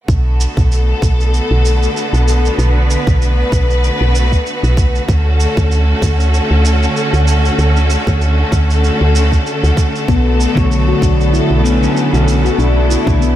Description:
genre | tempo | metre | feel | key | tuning
organic downtempo | 96 BPM | 4/4 | swing 56% on 16ths | B minor | A4 = 439 Hz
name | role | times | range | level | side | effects
bright studio string section | sustained chords | 0.1-13.4 s | D3 to B4 | -17 LUFS | equal | sidechain pumping
woody FM bass | bass | 0.1-13.4 s | B1 to D2 | -13 LUFS | equal | sidechain pumping
cabasa | drums | 0.1-13.4 s | none | -28 LUFS | right 5 dB | none
electronic kick drum | drums | 0.1-13.2 s | none | -14 LUFS | equal | none
handpan | arpeggios | 10.1-13.4 s | B3 to F#4 | -17 LUFS | left 5 dB | digital delay
electric guitar at the edge of break-up | accompaniment | 10.6-13.2 s | D3 to C#5 | -17 LUFS | equal | spring reverb, sidechain pumping, digital delay
room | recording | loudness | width
moderate concert hall reverb, RT60 2.1 s | big arena sound | -11 LUFS | side -12 dB against mid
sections
0.1-13.4 A section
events
filter sweep on FM bass 0.1-13.4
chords
0.1 Bm7; 5.1 Dmaj7; 10.1 Bm7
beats
| 0.08 0.71 1.33 1.96 | 2.58 3.21 3.83 4.46 | 5.08 5.71 6.33 6.96 | 7.58 8.21 8.83 9.46 | 10.08 10.71 11.33 11.96 | 12.58 13.21

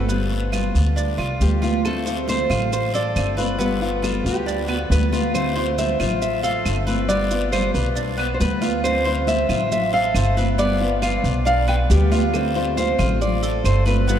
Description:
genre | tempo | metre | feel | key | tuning
latin, Cuban son and guajira | 137 BPM | 4/4 | straight | unclear | A4 = 440 Hz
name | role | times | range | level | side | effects
nylon-string guitar | melody | 0.0-14.2 s | G4 to G5 | -24 LUFS | equal | none
fingerpicked steel-string acoustic guitar | accompaniment | 0.0-14.2 s | D3 to F4 | -27 LUFS | left 4 dB | none
Cuban tres | arpeggios | 0.0-14.2 s | B3 to C5 | -26 LUFS | right 3 dB | none
upright bass | bass | 0.0-14.2 s | G1 to D2 | -22 LUFS | equal | none
congas | percussion | 0.1-14.2 s | none | -28 LUFS | right 1 dB | none
guiro | percussion | 0.1-14.2 s | none | -36 LUFS | left 6 dB | none
maracas | percussion | 0.1-14.2 s | none | -38 LUFS | right 7 dB | none
claves | percussion | 0.5-13.9 s | none | -37 LUFS | right 5 dB | none
room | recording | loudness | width
wet cathedral reverb, RT60 6.4 s | in a vast, echoing space | -18 LUFS | side -9 dB against mid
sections
0.0-1.8 A section; 1.8-14.2 B section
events
none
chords
0.1 G7; 1.8 Dm7; 3.6 G7; 5.3 Dm9; 7.1 G7; 8.8 Dm9; 10.6 G7; 12.3 Dm7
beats
| 0.10 0.53 0.97 1.41 | 1.85 2.28 2.72 3.16 | 3.60 4.04 4.47 4.91 | 5.35 5.78 6.22 6.66 | 7.09 7.53 7.97 8.41 | 8.84 9.28 9.72 10.15 | 10.59 11.03 11.46 11.90 | 12.34 12.77 13.21 13.64 | 14.08

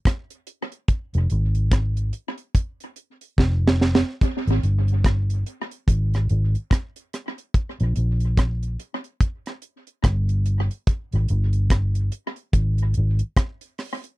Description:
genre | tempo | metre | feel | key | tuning
lovers rock reggae | 72 BPM | 4/4 | swing 60% on 16ths | unclear | A4 = 439 Hz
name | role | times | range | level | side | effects
deep reggae drum kit | drums | 0.1-14.2 s | hi-hat, kick drum, rim click, snare drum | -20 LUFS | equal | tape echo
vintage muted fingered electric bass | bass | 1.1-13.2 s | F1 to Bb1 | -20 LUFS | equal | none
room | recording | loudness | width
little or no reverb | dry, close 1970s-style studio recording | -20 LUFS | side -19 dB against mid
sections
0.0-14.2 A section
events
drum fill 3.4-4.2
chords
none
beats
0.05 | 0.89 1.72 2.55 3.38 | 4.21 5.05 5.88 6.71 | 7.54 8.38 9.21 10.04 | 10.87 11.70 12.54 13.37

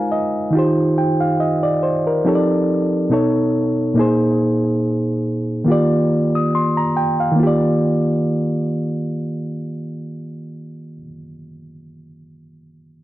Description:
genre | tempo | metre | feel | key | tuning
R&B | 70 BPM | 4/4 | swing 54% on 16ths | Eb major | A4 = 444 Hz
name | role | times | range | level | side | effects
reed electric piano | solo | 0.0-13.0 s | Bb2 to Eb6 | -16 LUFS | equal | none
room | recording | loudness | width
moderate studio reverb, RT60 0.6 s | dark, warm production | -16 LUFS | side -15 dB against mid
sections
0.0-7.4 A section; 7.4-10.8 B section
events
reed electric piano fill 0.0-0.5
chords
0.0 Ab6; 0.5 Eb6; 2.2 F13; 3.1 B9; 4.0 Bb9sus4; 5.7 Ebmaj9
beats
| 0.53 1.39 2.25 3.10 | 3.96 4.82 5.67 6.53 | 7.39 8.24 9.10 9.96

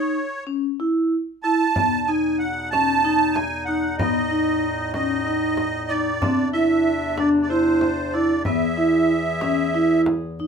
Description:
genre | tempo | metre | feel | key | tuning
contemporary instrumental, chamber music in an uneven meter | 188 BPM (eighths) | 7/8 | straight | E major | A4 = 438 Hz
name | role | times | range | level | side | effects
musette accordion | melody | 0.0-10.0 s | C5 to A5 | -24 LUFS | right 4 dB | none
vibraphone with medium mallets | arpeggios | 0.0-10.5 s | B3 to E4 | -21 LUFS | equal | none
warm woodwind section | sustained chords | 1.8-10.5 s | E2 to G#4 | -28 LUFS | left 3 dB | none
frame drum | percussion | 1.8-10.5 s | none | -28 LUFS | equal | none
room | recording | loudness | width
moderate studio reverb, RT60 0.6 s | none | -19 LUFS | side -6 dB against mid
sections
0.0-10.5 A section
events
none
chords
0.0 E5; 1.8 B/E; 6.2 Cadd9/E; 8.5 E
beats
0.15 0.47 0.79 1.12 1.44 | 1.76 2.09 2.41 2.73 3.05 3.36 3.68 | 4.00 4.32 4.63 4.95 5.27 5.58 5.90 | 6.22 6.54 6.86 7.17 7.49 7.81 8.13 | 8.45 8.77 9.09 9.41 9.74 10.06 10.38

